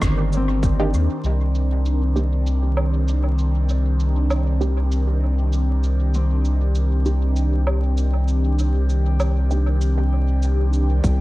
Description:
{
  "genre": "ambient dub",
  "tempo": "98 BPM",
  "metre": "4/4",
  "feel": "swing 54% on 16ths",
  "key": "C minor",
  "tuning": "A4 = 443 Hz",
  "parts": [
    { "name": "airy breathy pad", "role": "sustained chords", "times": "0.0-11.2 s", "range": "Eb3 to Bb4", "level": "-26 LUFS", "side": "equal", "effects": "chorus, phaser" },
    { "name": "round analog bass", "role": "bass", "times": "0.0-11.2 s", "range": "G1 to Eb2", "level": "-18 LUFS", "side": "equal", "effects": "none" },
    { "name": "electronic kick drum", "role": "drums", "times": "0.0-0.8, 11.0-11.2 s", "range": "none", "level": "-22 LUFS", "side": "equal", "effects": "overdrive" },
    { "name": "electronic rim click, cabasa and woodblock", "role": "drums", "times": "0.0-11.2 s", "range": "none", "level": "-31 LUFS", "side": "right 2 dB", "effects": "low-pass filter on perc, low-pass filter on snare, low-pass filter on room, dub echo" },
    { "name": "Celtic harp", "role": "arpeggios", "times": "0.4-9.2 s", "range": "C4", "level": "-33 LUFS", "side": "left 3 dB", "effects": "analog delay" },
    { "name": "filtered dub chord stab", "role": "stabs", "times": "0.8-9.7 s", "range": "Bb3 to G4", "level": "-30 LUFS", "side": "right 2 dB", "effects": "phaser, dub echo" }
  ],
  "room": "little or no reverb",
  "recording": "echo-heavy mix, vinyl crackle",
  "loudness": "-18 LUFS",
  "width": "side -18 dB against mid",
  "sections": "0.0-1.2 A section; 1.2-11.0 B section",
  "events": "none",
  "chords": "0.0 Cm9"
}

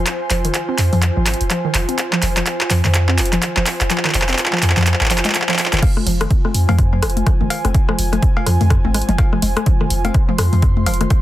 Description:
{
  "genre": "minimal techno",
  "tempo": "125 BPM",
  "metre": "4/4",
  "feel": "swing 60% on 16ths",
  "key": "F minor",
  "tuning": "A4 = 440 Hz",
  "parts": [
    { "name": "punchy sub bass", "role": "bass", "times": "0.0-11.1 s", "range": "F1 to F2", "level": "-17 LUFS", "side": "equal", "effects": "sidechain pumping" },
    { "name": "airy breathy pad", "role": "texture", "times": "0.0-11.2 s", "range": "F4 to C6", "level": "-25 LUFS", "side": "right 1 dB", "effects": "chorus, sidechain pumping" },
    { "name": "punchy analog drum machine", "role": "drums", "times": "0.1-11.2 s", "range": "crash cymbal, handclaps, hi-hat, rim click", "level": "-20 LUFS", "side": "equal", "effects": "overdrive" },
    { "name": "hollow square pluck", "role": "riff", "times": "0.3-11.0 s", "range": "Eb3 to C4", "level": "-24 LUFS", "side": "equal", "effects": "chorus, sidechain pumping, digital delay" },
    { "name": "electronic kick drum", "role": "drums", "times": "5.8-11.2 s", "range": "none", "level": "-15 LUFS", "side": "equal", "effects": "overdrive" },
    { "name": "booming analog drum machine", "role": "percussion", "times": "5.8-11.1 s", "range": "congas, cowbell, rim click, toms", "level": "-22 LUFS", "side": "left 5 dB", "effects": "digital delay" }
  ],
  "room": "little or no reverb",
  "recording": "dense, heavily limited modern master",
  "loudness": "-14 LUFS",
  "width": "side -14 dB against mid",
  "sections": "0.0-5.8 A section; 5.8-11.2 B section",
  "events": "build-up 0.0-5.8; drum fill 0.0-5.8; drop 5.8-11.2",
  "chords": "0.0 Fm"
}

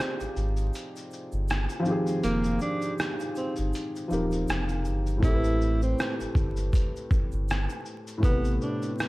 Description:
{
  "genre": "lo-fi hip hop",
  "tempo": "80 BPM",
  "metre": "4/4",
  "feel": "swing 58% on 16ths",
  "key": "unclear",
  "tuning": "A4 = 439 Hz",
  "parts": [
    { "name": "warm tenor saxophone", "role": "melody", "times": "0.0-9.0 s", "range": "Bb3 to E4", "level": "-31 LUFS", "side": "right 2 dB", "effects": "low-pass filter, tape echo" },
    { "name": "felt-muted upright piano", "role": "accompaniment", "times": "0.0-9.1 s", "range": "A2 to G5", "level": "-30 LUFS", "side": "left 1 dB", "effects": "cassette tape, low-pass filter" },
    { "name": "trip hop sampler-style drum kit", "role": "drums", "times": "0.0-9.1 s", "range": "hi-hat, kick drum, rim click, shaker", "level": "-28 LUFS", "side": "equal", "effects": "none" },
    { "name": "sub bass with octave", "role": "bass", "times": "0.2-8.6 s", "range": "Eb1 to A1", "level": "-28 LUFS", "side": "equal", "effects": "none" },
    { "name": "egg shaker", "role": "percussion", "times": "0.2-9.1 s", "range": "none", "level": "-56 LUFS", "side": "right 7 dB", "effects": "none" }
  ],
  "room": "light reverb, studio reverb",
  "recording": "dark, warm production, vinyl crackle",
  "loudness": "-25 LUFS",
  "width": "side -20 dB against mid",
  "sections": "0.0-9.1 A section",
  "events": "break 0.0-5.2",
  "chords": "0.0 Fm9; 5.2 Am9"
}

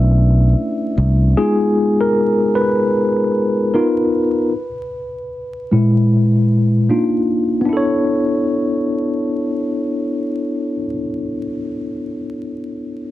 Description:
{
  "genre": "R&B",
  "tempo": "76 BPM",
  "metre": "4/4",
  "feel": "swing 61% on 16ths",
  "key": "unclear",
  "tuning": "A4 = 441 Hz",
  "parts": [
    { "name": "mellow tine electric piano", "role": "accompaniment", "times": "0.0-13.1 s", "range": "A#2 to E5", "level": "-16 LUFS", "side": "left 1 dB", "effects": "medium stereo tremolo" },
    { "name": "fingered electric bass", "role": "bass", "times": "0.0-1.3 s", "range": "B1 to C2", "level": "-12 LUFS", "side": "equal", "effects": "none" }
  ],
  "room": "light reverb",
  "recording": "dense, heavily limited modern master, vinyl crackle",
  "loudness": "-15 LUFS",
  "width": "side -14 dB against mid",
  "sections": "0.0-7.7 A section; 7.7-10.8 B section",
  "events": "tine electric piano solo 0.0-7.7",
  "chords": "0.0 Bm11; 1.4 G#m69; 3.7 Bmaj7#11; 4.5 E; 6.9 A#add11; 7.7 Bm11"
}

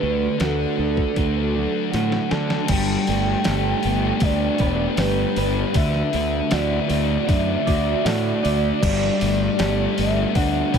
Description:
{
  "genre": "rock, shoegaze and dream pop",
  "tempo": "78 BPM",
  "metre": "4/4",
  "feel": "straight",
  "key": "G major",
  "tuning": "A4 = 440 Hz",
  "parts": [
    { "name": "pure breathy sine lead", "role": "melody", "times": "0.0-10.8 s", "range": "A4 to A5", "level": "-26 LUFS", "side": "equal", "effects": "chorus, ping-pong delay" },
    { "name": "electric guitar through a small old amp", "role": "riff", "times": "0.0-10.8 s", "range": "D3 to D5", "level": "-25 LUFS", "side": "right 11 dB", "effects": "reverse reverb" },
    { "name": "thick fuzz guitar", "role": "riff", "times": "0.0-10.8 s", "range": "D3 to A4", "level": "-25 LUFS", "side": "left 11 dB", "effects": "distortion, analog chorus" },
    { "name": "fuzz fingered electric bass", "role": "bass", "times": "0.0-10.8 s", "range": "E1 to D3", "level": "-24 LUFS", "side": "equal", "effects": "overdrive" },
    { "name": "detuned 8-bit digital drum machine", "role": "drums", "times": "0.4-10.8 s", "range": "crash cymbal, hi-hat, kick drum, snare drum", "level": "-26 LUFS", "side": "equal", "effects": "none" }
  ],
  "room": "moderate huge ambient reverb, RT60 7.4 s",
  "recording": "dreamy mix soaked in reverb",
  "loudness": "-18 LUFS",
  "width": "side -7 dB against mid",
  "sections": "0.0-2.7 A section; 2.7-10.8 B section",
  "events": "drum fill 1.9-2.7",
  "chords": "0.0 D; 2.7 Gadd9; 5.8 Dadd9; 8.8 Gadd9"
}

